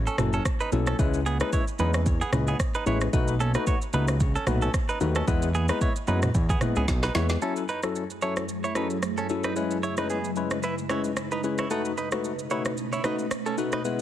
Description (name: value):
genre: afrobeats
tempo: 112 BPM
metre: 4/4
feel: swing 55% on 16ths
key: F# dorian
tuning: A4 = 440 Hz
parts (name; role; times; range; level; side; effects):
- fat analog bass; bass; 0.0-7.4 s; F#1 to F#2; -26 LUFS; equal; none
- direct-recorded clean electric guitar; riff; 0.1-13.8 s; B3 to C#5; -31 LUFS; right 3 dB; warbly pitch drift, ping-pong delay
- afro-pop drum kit; drums; 0.1-14.0 s; kick drum, rim click, shaker, snare drum, toms; -28 LUFS; right 1 dB; none
- barky tine electric piano; accompaniment; 0.2-14.0 s; F#3 to B4; -30 LUFS; left 5 dB; phaser
- congas; percussion; 0.2-7.3 s; none; -37 LUFS; right 9 dB; none
- ethereal airy pad; sustained chords; 8.0-14.0 s; F#2 to B4; -32 LUFS; right 2 dB; ensemble chorus, built-in reverb, phaser
- riser; sound effects; 13.8-14.0 s; none; barely audible; none; none
room: light reverb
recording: heavily compressed radio sound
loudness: -24 LUFS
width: side -11 dB against mid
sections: 0.0-7.4 A section; 7.4-14.0 B section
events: drum fill 6.9-7.4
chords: 0.0 F#m7; 1.0 C#m7; 3.1 B7; 5.3 E; 7.4 F#m7; 9.6 C#m7; 11.7 B7